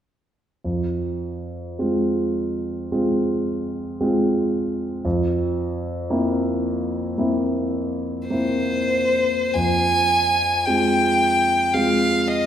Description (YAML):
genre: classical, romantic duo for violin and grand piano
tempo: 45-58 BPM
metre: 4/4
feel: rubato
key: F minor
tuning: A4 = 440 Hz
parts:
  - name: warm concert grand piano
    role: accompaniment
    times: 0.6-12.5 s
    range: F2 to F4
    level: -21 LUFS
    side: equal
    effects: none
  - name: clear violin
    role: melody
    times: 8.3-12.5 s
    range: C5 to Ab5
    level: -19 LUFS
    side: equal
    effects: none
room: wet scoring stage reverb, RT60 1.7 s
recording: heard from further back in the room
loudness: -19 LUFS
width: side -9 dB against mid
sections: 0.6-9.5 A section; 9.5-12.5 B section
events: none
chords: 0.6 Fm; 5.0 C7/F; 9.5 Fm